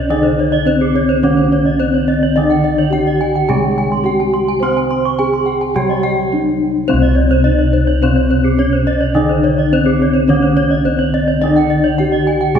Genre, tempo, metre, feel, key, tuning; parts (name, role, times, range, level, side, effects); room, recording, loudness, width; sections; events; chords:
Balinese gamelan; 106 BPM; 4/4; straight; C pelog; A4 = 440 Hz
gamelan-type bronze metallophone; melody; 0.0-12.6 s; C4 to C5; -16 LUFS; equal
gamelan-type bronze metallophone; accompaniment; 0.0-12.6 s; C3 to C4; -20 LUFS; right 1 dB
gamelan-type bronze metallophone; arpeggios; 0.0-12.6 s; Ab4-40c to Db6; -22 LUFS; right 5 dB
gamelan-type bossed gongs; bass; 0.0-12.6 s; C2 to C5; -18 LUFS; left 1 dB
gamelan-type bronze metallophone; arpeggios; 0.1-12.6 s; C5 to C6; -20 LUFS; left 3 dB
wet concert hall reverb, RT60 2.1 s; heard from further back in the room; -12 LUFS; side -8 dB against mid
0.0-6.9 A section; 6.9-12.6 A section